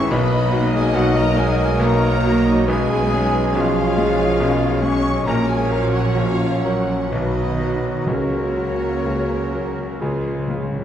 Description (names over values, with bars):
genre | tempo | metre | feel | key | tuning
classical | 61-72 BPM | 3/4 | rubato | F# major | A4 = 440 Hz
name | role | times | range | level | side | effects
bright concert grand piano | melody | 0.0-10.8 s | G#1 to A#4 | -21 LUFS | left 2 dB | none
warm studio violin section | melody | 0.0-10.5 s | C#5 to C#6 | -33 LUFS | left 3 dB | none
hollow concert flute | second line | 0.0-10.4 s | C#5 to C#6 | -32 LUFS | left 2 dB | none
warm cor anglais | second line | 0.0-10.6 s | G#4 to E5 | -34 LUFS | right 2 dB | none
warm studio violin section | second line | 0.0-10.5 s | G#4 to D#5 | -30 LUFS | left 4 dB | none
warm studio viola section | accompaniment | 0.0-10.7 s | G#3 to G#4 | -28 LUFS | right 2 dB | none
dark trumpet section | stabs | 0.0-10.5 s | C#4 to C#5 | -28 LUFS | right 2 dB | none
dark studio cello section | bass | 0.0-10.5 s | C#3 to C#4 | -26 LUFS | right 2 dB | none
warm studio double bass section | bass | 0.0-10.8 s | A#1 to C#2 | -26 LUFS | right 3 dB | none
warm clarinet | second line | 0.1-10.6 s | E#4 to A#4 | -30 LUFS | right 1 dB | none
warm bassoon | accompaniment | 0.1-10.6 s | F#3 to G#3 | -29 LUFS | right 3 dB | none
warm French horn section | sustained chords | 0.1-10.6 s | E#3 to D#4 | -28 LUFS | left 4 dB | none
timpani | percussion | 8.1-10.8 s | C#3 | -31 LUFS | left 1 dB | none
room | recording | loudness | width
wet scoring stage reverb, RT60 1.5 s | dark, warm production | -16 LUFS | side -10 dB against mid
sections
0.0-10.8 A section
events
timpani fill 10.0-10.8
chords
0.1 Bmaj7; 2.7 C#7/B; 5.3 F#/A#; 7.1 B; 8.1 F#/C#; 10.0 C#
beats
| 0.11 0.95 1.81 | 2.68 3.54 4.39 | 5.26 6.16 7.11 | 8.08 9.05 10.01